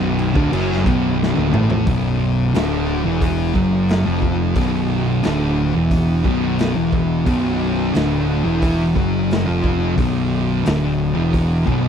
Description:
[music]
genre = stoner and doom metal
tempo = 89 BPM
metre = 4/4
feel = straight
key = B minor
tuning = A4 = 440 Hz
[part]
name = thick fuzz guitar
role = riff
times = 0.0-11.9 s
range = B1 to A3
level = -20 LUFS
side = left 8 dB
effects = distortion
[part]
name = thick fuzz guitar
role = riff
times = 0.0-11.9 s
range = B1 to A3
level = -21 LUFS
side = right 13 dB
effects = distortion
[part]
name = fuzz picked electric bass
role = bass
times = 0.0-11.9 s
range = B0 to A1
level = -23 LUFS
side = equal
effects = overdrive
[part]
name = raw garage drum kit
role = drums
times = 0.2-11.8 s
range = crash cymbal, hi-hat, kick drum, snare drum, toms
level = -23 LUFS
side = equal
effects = none
[sound]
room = light reverb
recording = none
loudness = -16 LUFS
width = side -8 dB against mid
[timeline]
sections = 0.0-1.9 A section; 1.9-11.9 B section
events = drum fill 1.2-1.9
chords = 0.0 Bm

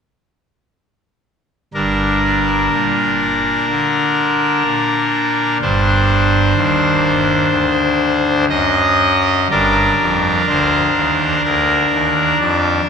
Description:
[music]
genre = classical, chorale-style piece for pipe organ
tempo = 62 BPM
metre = 4/4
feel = rubato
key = G minor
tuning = A4 = 440 Hz
[part]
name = pipe organ, trumpet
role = solo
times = 1.7-12.9 s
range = G1 to Eb5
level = -13 LUFS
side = equal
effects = none
[sound]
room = wet cathedral reverb, RT60 4.2 s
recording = minimal, uncompressed stereo recording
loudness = -13 LUFS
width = side -6 dB against mid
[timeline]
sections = 1.7-9.5 A section; 9.5-12.9 B section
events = none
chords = 1.7 Gm; 5.6 D7/G; 9.5 Gm

